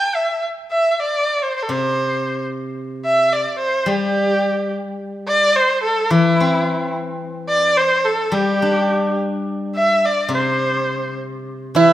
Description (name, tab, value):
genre	chinese traditional, Chinese chamber ensemble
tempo	106 BPM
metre	4/4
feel	rubato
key	C gong mode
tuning	A4 = 445 Hz
part	clear erhu	melody	0.0-11.9 s	E4 to G5	-17 LUFS	equal	none
part	steel-string zither	accompaniment	1.7-11.9 s	C3 to D4	-20 LUFS	left 2 dB	none
part	pipa	second line	11.8-11.9 s	E4	-11 LUFS	right 6 dB	none
room	moderate scoring stage reverb, RT60 1.6 s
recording	none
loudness	-16 LUFS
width	side -13 dB against mid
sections	0.0-11.8 A section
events	none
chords	none